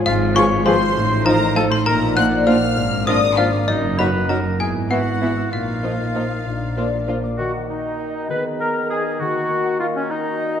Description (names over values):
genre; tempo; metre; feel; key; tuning
cinematic, playful, whimsical film cue; 66 BPM (dotted quarters); 6/8; straight; Eb minor; A4 = 440 Hz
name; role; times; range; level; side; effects
hollow flute section; second line; 0.0-10.6 s; Db5 to Cb6; -32 LUFS; left 1 dB; none
warm clarinet; second line; 0.0-10.6 s; Db4 to Cb5; -28 LUFS; left 2 dB; none
warm bassoon; accompaniment; 0.0-10.6 s; Eb3 to Gb3; -27 LUFS; right 1 dB; none
dark French horn section; sustained chords; 0.0-10.6 s; F3 to Ab4; -26 LUFS; left 2 dB; none
concert harp; arpeggios; 0.0-10.6 s; Gb2 to F6; -26 LUFS; left 6 dB; none
trough xylophone with wooden mallets; melody; 0.1-7.0 s; Eb5 to Gb6; -25 LUFS; left 3 dB; none
warm oboe; second line; 0.1-10.6 s; Db4 to Gb5; -26 LUFS; right 1 dB; none
warm studio violin section; second line; 0.1-7.0 s; Eb5 to Gb6; -26 LUFS; left 3 dB; none
rich studio cello section; bass; 0.1-7.2 s; Gb2 to Bb2; -24 LUFS; right 3 dB; none
rich studio double bass section; bass; 0.1-7.2 s; Gb1 to Bb1; -25 LUFS; right 3 dB; none
rich studio violin section; melody; 0.4-7.2 s; E4 to Ab4; -29 LUFS; left 5 dB; none
warm studio viola section; accompaniment; 0.4-7.2 s; F3 to F4; -26 LUFS; right 1 dB; none
room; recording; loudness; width
wet scoring stage reverb, RT60 1.9 s; dark, warm production; -17 LUFS; side -8 dB against mid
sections
0.0-7.4 A section; 7.4-10.6 B section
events
none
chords
0.1 Fdim/Ab; 1.0 F7/A; 1.9 Bb; 2.8 Bb7/Ab; 3.7 Ebm/Gb; 4.6 E/G#; 5.5 Bbsus4; 6.5 Bb; 7.4 Ebm; 8.3 Abm/Eb; 9.2 Ebm